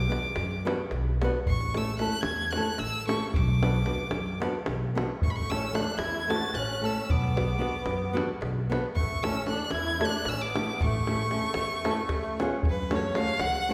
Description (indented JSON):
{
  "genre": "balkan folk, Balkan wedding band",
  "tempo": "225 BPM (eighths)",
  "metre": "7/8",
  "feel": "straight",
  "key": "A major",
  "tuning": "A4 = 440 Hz",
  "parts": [
    { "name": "clear violin", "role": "melody", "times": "0.0-13.7 s", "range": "B4 to A6", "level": "-35 LUFS", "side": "equal", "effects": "none" },
    { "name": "upright bass", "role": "bass", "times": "0.0-13.7 s", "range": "A1 to F#2", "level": "-34 LUFS", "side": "equal", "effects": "none" },
    { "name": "flamenco guitar", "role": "accompaniment", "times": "0.1-13.7 s", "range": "A3 to C#5", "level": "-35 LUFS", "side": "equal", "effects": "none" },
    { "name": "davul", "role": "percussion", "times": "0.1-13.6 s", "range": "none", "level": "-34 LUFS", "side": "equal", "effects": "none" },
    { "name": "musette accordion", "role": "second line", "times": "5.2-12.4 s", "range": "G#3 to F#4", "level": "-38 LUFS", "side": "equal", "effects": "none" }
  ],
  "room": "wet scoring stage reverb, RT60 1.9 s",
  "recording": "recorded in a church or concert hall",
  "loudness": "-28 LUFS",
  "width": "mono",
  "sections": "0.0-12.7 A section; 12.7-13.7 B section",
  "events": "none",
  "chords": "0.0 Bm; 1.5 A; 3.3 Bm; 5.2 A; 7.1 Bm; 8.9 A; 12.1 C#7; 12.7 F#m"
}